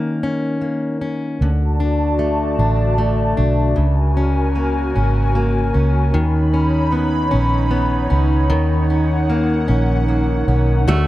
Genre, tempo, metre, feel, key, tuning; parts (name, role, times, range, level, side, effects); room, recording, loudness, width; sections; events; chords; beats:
six-eight pop ballad; 51 BPM (dotted quarters); 6/8; straight; A4 = 441 Hz
fingerpicked plugged-in steel-string acoustic guitar; accompaniment; 0.0-11.1 s; C#3 to F#4; -20 LUFS; left 2 dB
airy breathy pad; sustained chords; 1.4-11.1 s; D#4 to B5; -22 LUFS; right 1 dB; chorus
vintage muted fingered electric bass; bass; 1.4-11.1 s; G#1 to D#2; -17 LUFS; right 1 dB
fingerpicked steel-string acoustic guitar; arpeggios; 10.9-11.1 s; A3; -20 LUFS; right 4 dB
light reverb, small room ambience; dark, warm production; -15 LUFS; side -15 dB against mid
0.0-10.9 A section
0.0 D#5; 1.4 D; 3.8 F#add9/C#; 6.1 Badd9/D#; 8.5 D#m7
0.23 | 1.41 2.60 | 3.78 4.96 | 6.14 7.33 | 8.51 9.69 | 10.87